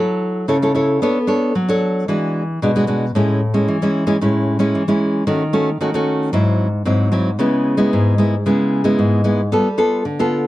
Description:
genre	samba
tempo	113 BPM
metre	4/4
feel	straight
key	A major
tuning	A4 = 438 Hz
part	nylon-string guitar	solo	0.0-10.5 s	G#2 to C#5	-15 LUFS	equal	none
room	light reverb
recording	dry, close 1970s-style studio recording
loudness	-15 LUFS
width	side -16 dB against mid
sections	0.0-10.5 A section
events	none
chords	0.0 F#m7; 1.0 Bm9; 2.1 E9; 3.1 Amaj7; 5.3 D#m7b5; 6.3 G#aug7; 7.4 C#m7; 9.5 G9

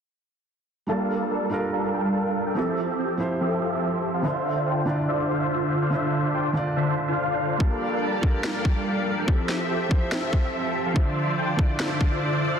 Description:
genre	future bass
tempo	143 BPM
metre	4/4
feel	half-time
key	D minor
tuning	A4 = 440 Hz
part	felt-muted upright piano	accompaniment	0.9-12.6 s	D3 to A5	-28 LUFS	right 2 dB	sidechain pumping, ping-pong delay
part	supersaw chords	riff	0.9-12.6 s	D3 to A5	-25 LUFS	equal	phaser, wide subtle chorus, sidechain pumping, low-pass filter
part	muted studio string section	sustained chords	7.6-12.6 s	F3 to E5	-32 LUFS	left 2 dB	sidechain pumping
part	electronic kick drum	drums	7.6-12.1 s	none	-22 LUFS	equal	overdrive
part	electronic snare drum	drums	8.4-11.9 s	none	-32 LUFS	equal	overdrive
room	moderate lush hall reverb, RT60 1.9 s, studio reverb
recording	dense, heavily limited modern master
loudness	-22 LUFS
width	side -7 dB against mid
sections	0.9-12.6 A section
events	none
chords	0.9 Gm7; 2.6 Fmaj7; 4.2 Dm9; 7.6 Gm7; 9.3 Fmaj7; 11.0 Dm9

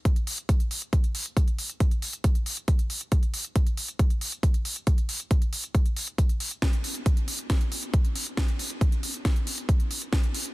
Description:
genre	trance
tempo	137 BPM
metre	4/4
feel	straight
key	none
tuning	none
part	electronic kick drum	drums	0.1-10.2 s	none	-23 LUFS	equal	none
part	techno drum kit	drums	0.1-10.5 s	hi-hat, snare drum	-31 LUFS	equal	overdrive
room	digital ambience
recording	dense, heavily limited modern master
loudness	-24 LUFS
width	side -20 dB against mid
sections	0.0-10.5 A section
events	none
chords	none

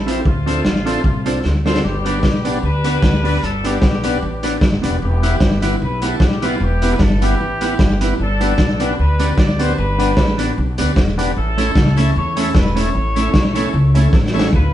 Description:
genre	ska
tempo	151 BPM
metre	4/4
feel	swing 55% on 8ths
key	unclear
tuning	A4 = 439 Hz
part	warm horn section	melody	0.0-14.7 s	A3 to D5	-24 LUFS	left 1 dB	none
part	upright bass	bass	0.0-14.7 s	E1 to E2	-19 LUFS	equal	none
part	mellow electric guitar	accompaniment	0.1-14.5 s	A3 to C5	-24 LUFS	right 3 dB	slapback echo
part	overdriven tonewheel organ	stabs	0.1-14.5 s	B3 to C#5	-23 LUFS	left 2 dB	slow rotary speaker
part	vintage drum kit	drums	0.1-14.6 s	hi-hat, kick drum, snare drum	-17 LUFS	equal	slapback echo
part	tambourine	percussion	0.1-14.4 s	none	-39 LUFS	right 4 dB	slapback echo
room	wet stone room reverb, RT60 1.0 s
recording	band playing live in one room, nothing above 10.5 kHz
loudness	-14 LUFS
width	side -12 dB against mid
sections	0.0-1.8 A section; 1.8-14.5 B section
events	drum fill 1.4-1.8, 14.1-14.5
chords	0.3 Dm7; 1.8 G; 5.0 Em; 8.2 G; 11.4 A

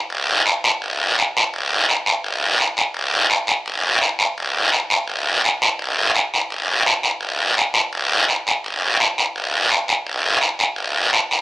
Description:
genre	latin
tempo	169 BPM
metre	4/4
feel	straight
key	none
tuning	none
part	guiro	percussion	0.1-11.4 s	none	-16 LUFS	equal	none
room	moderate large studio reverb, RT60 0.8 s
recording	worn, warbling old tape, cassette tape, warbly pitch drift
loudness	-16 LUFS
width	side -18 dB against mid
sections	0.0-5.8 A section; 5.8-11.4 B section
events	none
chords	none

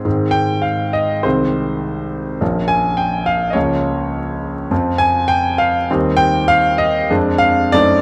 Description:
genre	classical, romantic character piece for solo piano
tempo	102 BPM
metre	2/4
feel	uneven beats, rubato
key	Ab major, C minor from 4.7 s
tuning	A4 = 441 Hz
part	clear grand piano	solo	0.0-8.0 s	Bb1 to Ab5	-17 LUFS	equal	none
room	moderate concert hall reverb, RT60 2.3 s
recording	close, detailed microphones, vinyl crackle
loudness	-17 LUFS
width	mono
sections	0.1-8.0 A section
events	none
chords	0.1 Ab; 1.3 Ab/C; 2.4 Bbm; 3.6 Bbm/Db; 4.7 F5; 5.9 Cm/Eb; 7.1 Dm7b5/F

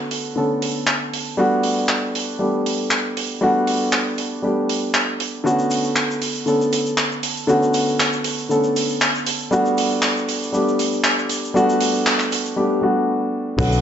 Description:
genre	nu-disco, nu disco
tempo	118 BPM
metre	4/4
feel	straight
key	unclear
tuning	A4 = 439 Hz
part	dark concert grand piano	accompaniment	0.0-13.8 s	D3 to A4	-19 LUFS	equal	sidechain pumping, dub echo
part	tight funk drum kit	drums	0.1-13.8 s	crash cymbal, handclaps, hi-hat, shaker	-22 LUFS	right 1 dB	high-pass filter on hats, small room ambience, high-pass filter on cymbals, high-pass filter on perc, high-pass filter on snare, high-pass filter on room
part	fingered electric bass with an envelope filter	bass	13.6-13.8 s	B1	-18 LUFS	equal	none
part	kick drum	drums	13.6-13.7 s	none	-24 LUFS	equal	small room ambience
room	moderate digital room reverb, RT60 1.0 s, small room reverb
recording	nothing above 7.8 kHz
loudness	-17 LUFS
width	side -9 dB against mid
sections	0.0-13.6 A section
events	build-up 0.0-13.6; break 12.6-13.6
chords	0.0 Bm7; 1.4 Gmaj9; 5.5 Bm7; 9.5 Gmaj9

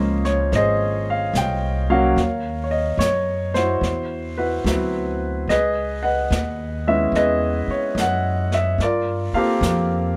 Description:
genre	jazz ballad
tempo	73 BPM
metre	4/4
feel	swing 66% on 8ths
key	unclear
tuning	A4 = 439 Hz
part	warm grand piano	accompaniment	0.0-10.2 s	F3 to G5	-23 LUFS	equal	none
part	upright bass	bass	0.0-10.2 s	Ab1 to G2	-26 LUFS	equal	none
part	jazz brush drum kit	drums	0.2-10.2 s	brushed snare drum, hi-hat, snare drum	-32 LUFS	equal	none
room	light reverb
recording	none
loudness	-21 LUFS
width	mono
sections	0.0-10.2 A section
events	none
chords	0.0 Bbm9; 2.2 Ebm7; 3.8 D13; 5.5 Dbm9; 8.8 Gm11

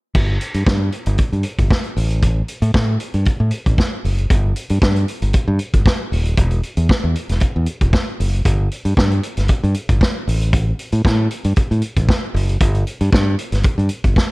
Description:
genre	disco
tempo	116 BPM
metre	4/4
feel	straight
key	unclear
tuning	A4 = 440 Hz
part	vintage drum kit	drums	0.1-14.3 s	crash cymbal, hi-hat, kick drum, snare drum	-18 LUFS	equal	none
part	modern bright fingered electric bass	bass	0.2-14.1 s	Eb1 to A2	-17 LUFS	equal	none
room	little or no reverb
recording	dark, warm production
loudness	-15 LUFS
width	side -23 dB against mid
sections	0.1-14.3 A section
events	none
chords	none

